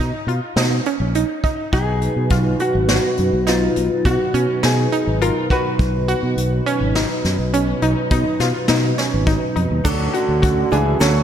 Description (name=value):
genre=progressive instrumental, band music in an uneven meter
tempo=104 BPM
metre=7/4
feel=straight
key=B lydian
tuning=A4 = 445 Hz
part: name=analog pluck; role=arpeggios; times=0.0-11.2 s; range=C#4 to F#4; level=-23 LUFS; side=right 2 dB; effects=chorus, slapback echo
part: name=fingered electric bass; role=bass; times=0.0-11.2 s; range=G#1 to B2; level=-20 LUFS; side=equal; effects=none
part: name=vintage brush drum kit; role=drums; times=0.3-11.1 s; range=crash cymbal, hi-hat, kick drum, snare drum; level=-22 LUFS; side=equal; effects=none
part: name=vintage hollow-body jazz guitar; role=melody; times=1.7-11.2 s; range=E#4 to B4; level=-22 LUFS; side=left 3 dB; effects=tape echo
part: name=dark analog pad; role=accompaniment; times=1.7-11.2 s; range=B2 to B4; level=-23 LUFS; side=right 3 dB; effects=chorus
part: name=brilliant trombone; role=second line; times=9.9-11.2 s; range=D3 to F#3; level=-24 LUFS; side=right 4 dB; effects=slapback echo
part: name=egg shaker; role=percussion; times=9.9-11.2 s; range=none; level=-39 LUFS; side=left 7 dB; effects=none
room=moderate lush hall reverb, RT60 2.3 s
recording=big arena sound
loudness=-16 LUFS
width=side -9 dB against mid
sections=0.0-9.8 A section; 9.8-11.2 B section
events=none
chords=0.0 C#add9; 1.7 B; 9.8 Dmaj7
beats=0.57 1.15 | 1.73 2.31 2.89 3.47 4.05 4.63 5.21 | 5.79 6.37 6.95 7.53 8.11 8.69 9.27 | 9.85 10.43 11.01